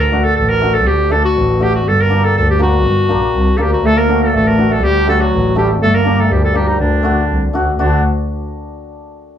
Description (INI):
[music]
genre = klezmer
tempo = 122 BPM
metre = 2/4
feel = straight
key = unclear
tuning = A4 = 440 Hz
[part]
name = bright clarinet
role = melody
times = 0.0-8.0 s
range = D4 to Bb4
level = -16 LUFS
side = equal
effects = none
[part]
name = clear double bass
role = bass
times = 0.0-8.0 s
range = G1 to D2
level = -16 LUFS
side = equal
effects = none
[part]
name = hammered dulcimer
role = accompaniment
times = 0.1-8.0 s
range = A3 to Bb4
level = -20 LUFS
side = left 2 dB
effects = none
[part]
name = bright trombone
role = second line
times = 3.8-8.0 s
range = D3 to Bb3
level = -17 LUFS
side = equal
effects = none
[sound]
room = wet studio reverb, RT60 0.6 s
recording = heard from further back in the room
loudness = -11 LUFS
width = side -9 dB against mid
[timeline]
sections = 0.0-7.8 A section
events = none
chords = 0.0 D; 1.9 Gm; 3.8 D; 5.8 Gm; 6.8 D